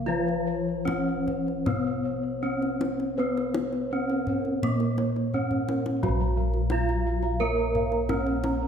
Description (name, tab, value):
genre	Javanese gamelan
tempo	74-87 BPM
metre	4/4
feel	straight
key	Bb pelog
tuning	A4 = 440 Hz
part	gamelan-type bronze metallophone	melody	0.0-8.7 s	Gb3-20c to Bb4	-28 LUFS	right 2 dB	none
part	gamelan-type bronze metallophone	accompaniment	0.0-8.7 s	F3-30c to Cb4+20c	-32 LUFS	left 5 dB	none
part	gamelan-type bronze metallophone	arpeggios	0.0-8.7 s	Gb4-20c to Bb5	-36 LUFS	right 5 dB	none
part	gamelan-type bossed gongs	bass	0.0-8.7 s	Bb1 to Cb5+20c	-30 LUFS	equal	none
part	gamelan-type bossed gongs	arpeggios	0.1-8.7 s	Bb4 to Bb5	-35 LUFS	left 6 dB	none
part	kendang	percussion	0.3-8.6 s	none	-34 LUFS	left 2 dB	none
room	moderate recital hall reverb, RT60 1.4 s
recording	none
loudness	-24 LUFS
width	side -7 dB against mid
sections	0.0-6.0 A section; 6.0-8.7 B section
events	drum fill 5.3-6.0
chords	none